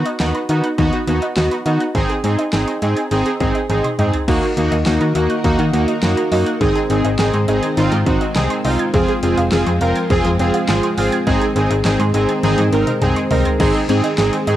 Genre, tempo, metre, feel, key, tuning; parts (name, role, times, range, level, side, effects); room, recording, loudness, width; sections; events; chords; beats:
synth-pop; 103 BPM; 4/4; straight; A4 = 439 Hz
analog synth brass; accompaniment; 0.0-14.6 s; Bb3 to Bb4; -18 LUFS; right 1 dB; chorus, cassette tape
soft round pluck; arpeggios; 0.0-14.6 s; Eb3 to Ab6; -25 LUFS; equal; chorus, phaser, cassette tape, analog delay
slap-like FM bass; bass; 0.0-14.6 s; F1 to Eb3; -19 LUFS; equal
pop drum kit; drums; 0.1-14.6 s; crash cymbal, handclaps, hi-hat, kick drum, snare drum, toms; -22 LUFS; equal; cassette tape
string machine, full ensemble; sustained chords; 4.3-14.6 s; Eb3 to Bb4; -23 LUFS; equal; ensemble chorus, cassette tape
moderate studio reverb, RT60 0.6 s; home recording on cassette; -14 LUFS; side -13 dB against mid
0.0-4.3 A section; 4.3-13.6 B section
drum fill 3.7-4.3, 12.4-13.6
0.0 Cb/Eb; 1.9 Ab; 4.3 Ebm; 6.6 Ab; 8.9 Fm; 11.3 Ab
0.20 0.78 1.37 | 1.95 2.53 3.11 3.70 | 4.28 4.86 5.44 6.03 | 6.61 7.19 7.77 8.36 | 8.94 9.52 10.10 10.69 | 11.27 11.85 12.43 13.02 | 13.60 14.18